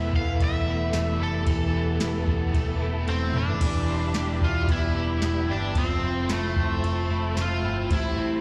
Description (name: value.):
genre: dream pop.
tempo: 112 BPM.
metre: 4/4.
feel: straight.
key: unclear.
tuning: A4 = 440 Hz.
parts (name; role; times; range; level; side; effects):
overdriven slide guitar; melody; 0.0-8.4 s; A3 to F5; -32 LUFS; equal; digital delay.
biting overdriven guitar; accompaniment; 0.0-8.4 s; E2 to E4; -39 LUFS; equal; tremolo, subtle chorus.
mellow tonewheel organ; sustained chords; 0.0-8.4 s; E3 to B5; -36 LUFS; equal; chorus vibrato, fast rotary speaker.
electric guitar at the edge of break-up; arpeggios; 0.0-8.4 s; A2 to G4; -34 LUFS; equal; ensemble chorus, digital delay.
vintage muted picked electric bass; bass; 0.0-8.4 s; E1 to A1; -30 LUFS; equal; none.
soft vintage rhythm box; drums; 0.1-8.0 s; crash cymbal, kick drum, ride cymbal, snare drum, tambourine, toms; -29 LUFS; equal; none.
drifting glass-harmonics texture; texture; 0.4-8.4 s; G4 to A5; -47 LUFS; equal; none.
room: light reverb.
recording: played on a big sound system in a bare room, large studio reverb.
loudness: -25 LUFS.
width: mono.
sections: 0.0-3.6 A section; 3.6-8.4 B section.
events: drum fill 3.1-3.6.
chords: 0.0 Esus4; 3.6 Em7; 5.8 Fmaj7; 7.9 Am7.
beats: 0.40 0.94 | 1.47 2.01 2.54 3.08 | 3.61 4.15 4.69 5.22 | 5.76 6.29 6.83 7.36 | 7.90.